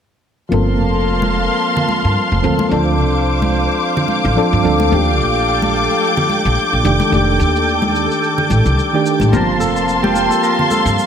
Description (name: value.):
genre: sunset chillout.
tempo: 109 BPM.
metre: 4/4.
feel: swing 56% on 16ths.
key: G minor.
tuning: A4 = 442 Hz.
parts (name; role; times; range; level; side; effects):
soft electric-piano-like synth keys; accompaniment; 0.5-11.1 s; Eb3 to A5; -18 LUFS; equal; chorus, auto-pan, low-pass filter, digital delay.
dark symphonic string section; sustained chords; 0.5-11.1 s; Bb3 to D6; -17 LUFS; equal; none.
upright bass; bass; 0.5-11.0 s; F1 to G2; -17 LUFS; equal; none.
shaker; drums; 0.5-11.1 s; none; -34 LUFS; right 2 dB; low-pass filter on perc.
congas; percussion; 1.2-10.8 s; none; -23 LUFS; left 2 dB; none.
Celtic harp; arpeggios; 9.3-11.1 s; F4 to Bb4; -20 LUFS; right 2 dB; digital delay.
room: moderate plate reverb, RT60 1.6 s, small room ambience.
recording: bright 1980s-style digital production.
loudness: -13 LUFS.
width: side -8 dB against mid.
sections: 0.5-11.1 A section.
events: filter sweep on synth keys 0.5-11.1.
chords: 0.5 Gm11; 2.7 Dm7; 4.9 Ebmaj9#11; 6.9 F13; 9.3 Gm11.